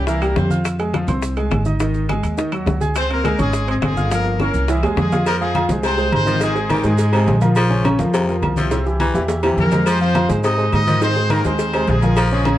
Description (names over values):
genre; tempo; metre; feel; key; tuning
latin, salsa; 208 BPM; 4/4; straight; F minor; A4 = 444 Hz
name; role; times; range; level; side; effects
brilliant horn section; melody; 0.0-0.6, 3.0-7.4, 9.6-12.6 s; G3 to Eb5; -22 LUFS; left 1 dB; slapback echo
clear baby grand piano; accompaniment; 0.0-12.6 s; C3 to Ab6; -21 LUFS; equal; none
upright bass; bass; 0.0-12.5 s; G1 to Ab2; -20 LUFS; equal; none
bongos and cowbell; percussion; 0.1-12.6 s; none; -28 LUFS; left 3 dB; none
congas; percussion; 0.1-12.6 s; none; -25 LUFS; equal; none
maracas; percussion; 0.1-12.6 s; none; -39 LUFS; right 8 dB; none
claves; percussion; 0.2-12.6 s; none; -35 LUFS; left 6 dB; none
timbales and agogo bells; percussion; 0.2-12.6 s; none; -26 LUFS; right 4 dB; none
raspy baritone saxophone; second line; 5.3-12.5 s; C3 to F3; -24 LUFS; left 3 dB; none
room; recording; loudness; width
little or no reverb; worn, warbling old tape, cassette tape, warbly pitch drift; -15 LUFS; side -13 dB against mid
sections
0.0-5.3 A section; 5.3-12.6 B section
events
drum fill 4.4-5.3, 8.7-9.9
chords
0.1 C7; 0.6 Fm7; 1.8 Ab5; 3.0 Dbmaj7; 4.1 Gm7b5; 4.7 Caug; 5.3 Fm; 6.4 Ab; 7.6 Bbmadd9; 8.7 C7; 9.9 Fm; 11.0 Ab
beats
0.07 0.36 | 0.65 0.94 1.23 1.51 | 1.80 2.09 2.38 2.67 | 2.96 3.25 3.53 3.82 | 4.11 4.40 4.68 4.97 | 5.26 5.55 5.84 6.12 | 6.41 6.70 6.99 7.28 | 7.56 7.85 8.14 8.43 | 8.71 9.00 9.29 9.58 | 9.87 10.15 10.44 10.73 | 11.02 11.30 11.59 11.88 | 12.17 12.46